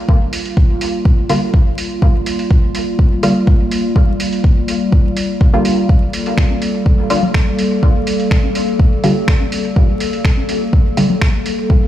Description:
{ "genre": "dub techno", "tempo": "124 BPM", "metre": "4/4", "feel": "straight", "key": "G minor", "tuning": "A4 = 438 Hz", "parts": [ { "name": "warbly tape-like pad", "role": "sustained chords", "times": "0.0-11.9 s", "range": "G3 to A4", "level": "-19 LUFS", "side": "equal", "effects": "chorus, built-in reverb, sidechain pumping" }, { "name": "electronic kick drum", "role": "drums", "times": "0.1-11.8 s", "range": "none", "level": "-12 LUFS", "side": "equal", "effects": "none" }, { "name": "lo-fi sampler-style drum kit", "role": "drums", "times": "0.3-11.6 s", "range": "finger snaps, hi-hat", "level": "-24 LUFS", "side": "right 2 dB", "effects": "dub echo" }, { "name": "filtered dub chord stab", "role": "stabs", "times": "1.3-11.1 s", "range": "D3 to F4", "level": "-21 LUFS", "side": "equal", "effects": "chorus, phaser, cassette tape, sidechain pumping, dub echo" }, { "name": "congas", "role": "percussion", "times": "6.5-11.2 s", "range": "none", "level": "-22 LUFS", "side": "left 4 dB", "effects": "sidechain pumping on perc, dub echo" } ], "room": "little or no reverb", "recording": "played on a big sound system in a bare room, stone room reverb, vinyl crackle", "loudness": "-12 LUFS", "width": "side -12 dB against mid", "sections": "0.0-11.9 A section", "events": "filter sweep on synth stab 0.0-11.9", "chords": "0.0 Gm7" }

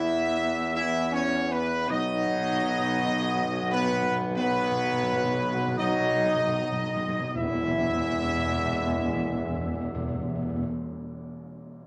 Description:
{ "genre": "classical, ceremonial fanfare", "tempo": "37-55 BPM", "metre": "4/4", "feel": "straight", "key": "E major", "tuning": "A4 = 440 Hz", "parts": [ { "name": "clear trumpet section", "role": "melody", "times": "0.0-10.7 s", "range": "B4 to E5", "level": "-32 LUFS", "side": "equal", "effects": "none" }, { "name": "warm French horn section", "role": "sustained chords", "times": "0.0-10.7 s", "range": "B3 to E4", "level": "-32 LUFS", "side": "equal", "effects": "none" }, { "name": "warm trombone section", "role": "sustained chords", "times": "0.0-10.7 s", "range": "E3 to B3", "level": "-35 LUFS", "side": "equal", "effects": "none" }, { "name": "warm tuba", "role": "bass", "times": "0.0-10.6 s", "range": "B1 to E2", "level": "-34 LUFS", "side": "equal", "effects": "none" }, { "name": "timpani", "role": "percussion", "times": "1.9-10.7 s", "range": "E2 to B2", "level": "-36 LUFS", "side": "equal", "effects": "none" }, { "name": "tam-tam", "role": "percussion", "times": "7.3-10.7 s", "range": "none", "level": "-44 LUFS", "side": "equal", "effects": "none" } ], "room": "moderate large studio reverb, RT60 0.8 s", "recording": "none", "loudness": "-27 LUFS", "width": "mono", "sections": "0.0-7.3 A section; 7.3-11.9 B section", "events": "slowing down 0.0-7.3; timpani fill 1.9-7.3; band accent 7.3-8.9", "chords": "0.0 E5; 1.9 B; 7.3 E" }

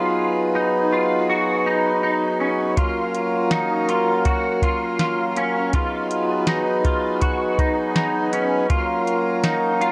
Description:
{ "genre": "dream pop", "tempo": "81 BPM", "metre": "4/4", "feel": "straight", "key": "unclear", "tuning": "A4 = 441 Hz", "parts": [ { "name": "pedal harmonium", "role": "sustained chords", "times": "0.0-9.9 s", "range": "F#3 to E#5", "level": "-24 LUFS", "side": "equal", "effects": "none" }, { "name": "clean electric guitar", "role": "arpeggios", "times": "0.0-9.9 s", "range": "C#4 to F#4", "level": "-26 LUFS", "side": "equal", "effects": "ensemble chorus, delay" }, { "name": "soft vintage rhythm box", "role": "drums", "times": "2.8-9.9 s", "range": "hi-hat, kick drum, snare drum", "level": "-25 LUFS", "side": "equal", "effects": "none" } ], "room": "wet plate reverb, RT60 2.6 s", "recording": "none", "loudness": "-21 LUFS", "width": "mono", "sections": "0.0-9.9 A section", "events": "none", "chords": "0.0 B6; 2.8 F#maj7; 5.7 B6; 8.7 F#maj7" }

